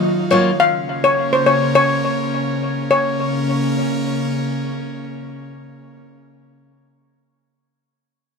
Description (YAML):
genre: dancehall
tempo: 104 BPM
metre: 4/4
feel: straight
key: Bb minor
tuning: A4 = 440 Hz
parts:
  - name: airy breathy pad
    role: sustained chords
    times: 0.0-6.0 s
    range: Db3 to F4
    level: -21 LUFS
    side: equal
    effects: chorus
  - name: steel pan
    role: melody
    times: 0.3-4.6 s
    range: C5 to F5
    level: -17 LUFS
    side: left 2 dB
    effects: dub echo
  - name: picked steel-string acoustic guitar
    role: arpeggios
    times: 0.3-0.5 s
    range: Gb3 to F4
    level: -20 LUFS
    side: left 1 dB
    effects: none
room: light reverb, studio ambience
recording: echo-heavy mix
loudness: -15 LUFS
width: side -5 dB against mid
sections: 0.0-2.9 A section; 2.9-5.2 B section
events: none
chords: 0.0 Ebmadd9; 0.6 Bbm